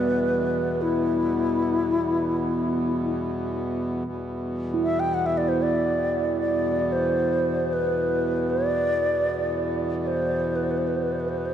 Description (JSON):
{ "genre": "world meditative, free-time meditation music", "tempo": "free time", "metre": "none", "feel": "none", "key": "E minor", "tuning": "A4 = 440 Hz", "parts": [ { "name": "wooden-headed alto flute", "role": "melody", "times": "0.0-11.5 s", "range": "E4 to G5", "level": "-25 LUFS", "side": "left 1 dB", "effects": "diffuse ambient delay" }, { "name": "hand-pumped harmonium", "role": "drone", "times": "0.0-11.5 s", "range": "E2 to B2", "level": "-28 LUFS", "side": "equal", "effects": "none" }, { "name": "quartz singing bowl", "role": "texture", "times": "0.0-11.5 s", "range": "G3 to E4", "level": "-29 LUFS", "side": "right 3 dB", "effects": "none" } ], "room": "moderate huge ambient reverb, RT60 6.6 s", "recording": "cassette tape", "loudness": "-22 LUFS", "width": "side -9 dB against mid", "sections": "0.0-4.1 A section; 4.1-11.5 A section", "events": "none", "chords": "none", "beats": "free time" }